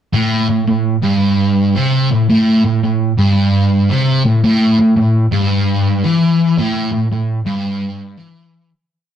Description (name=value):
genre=rock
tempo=112 BPM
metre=4/4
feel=swing 66% on 8ths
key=A minor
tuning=A4 = 444 Hz
part: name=sludgy distorted guitar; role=solo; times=0.1-8.7 s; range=G2 to E3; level=-12 LUFS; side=equal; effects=overdrive
room=wet stone room reverb, RT60 1.0 s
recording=rough rehearsal-room recording, tube saturation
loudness=-12 LUFS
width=side -9 dB against mid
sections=0.1-8.7 riff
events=fade-out 6.6-8.7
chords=none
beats=| 0.12 0.67 1.21 1.75 | 2.29 2.83 3.37 3.90 | 4.44 4.98 5.51 6.04 | 6.58 7.11 7.64 8.17